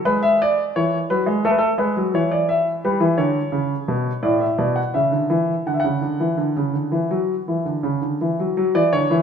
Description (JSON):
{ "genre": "classical, baroque-style two-part invention for grand piano", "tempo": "85 BPM", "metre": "4/4", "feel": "straight", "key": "D major", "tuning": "A4 = 444 Hz", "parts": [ { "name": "warm grand piano", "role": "solo", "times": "0.1-9.2 s", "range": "A2 to F#5", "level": "-18 LUFS", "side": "equal", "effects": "none" } ], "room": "wet recital hall reverb, RT60 1.7 s", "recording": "none", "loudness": "-18 LUFS", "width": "side -7 dB against mid", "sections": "0.0-8.6 A section", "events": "none", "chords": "0.0 E7/G#; 1.4 A5; 2.8 E5; 4.2 D/A; 4.9 C#m; 5.7 D", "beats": "| 0.04 0.74 1.43 2.13 | 2.83 3.52 4.23 4.94 | 5.66 6.39 7.11 7.84 | 8.56" }